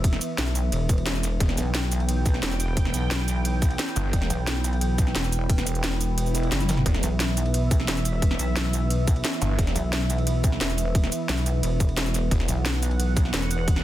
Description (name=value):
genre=dark technical drum and bass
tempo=176 BPM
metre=4/4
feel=straight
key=E minor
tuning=A4 = 438 Hz
part: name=sweeping resonant pad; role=sustained chords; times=0.0-13.8 s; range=E3 to G5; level=-30 LUFS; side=right 3 dB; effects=chorus, sidechain pumping
part: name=pulsing pluck wobble bass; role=bass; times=0.0-13.8 s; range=E1 to B1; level=-25 LUFS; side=equal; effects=chorus
part: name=breakbeat sampler-style drum kit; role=drums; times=0.0-13.8 s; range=ride cymbal, snare drum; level=-39 LUFS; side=right 2 dB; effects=high-pass filter on cymbals, high-pass filter on snare
part: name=drum and bass drum kit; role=drums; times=0.0-13.8 s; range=hi-hat, shaker, snare drum, toms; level=-28 LUFS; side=equal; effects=none
part: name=electronic kick drum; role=drums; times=0.0-13.7 s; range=none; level=-22 LUFS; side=equal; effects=overdrive
part: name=snarling distorted saw bass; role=bass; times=1.4-1.6, 4.0-4.3, 6.9-7.0, 9.4-9.7, 12.3-12.5 s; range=E1 to G1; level=-26 LUFS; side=equal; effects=distortion, overdrive, sidechain pumping
part: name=swell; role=sound effects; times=6.3-6.9 s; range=none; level=-35 LUFS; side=left 1 dB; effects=none
room=digital ambience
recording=dense, heavily limited modern master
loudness=-22 LUFS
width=side -14 dB against mid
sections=0.0-13.8 A section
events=kick drops out 6.2-6.9; swell 6.3-6.9; drum fill 6.6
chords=0.0 E5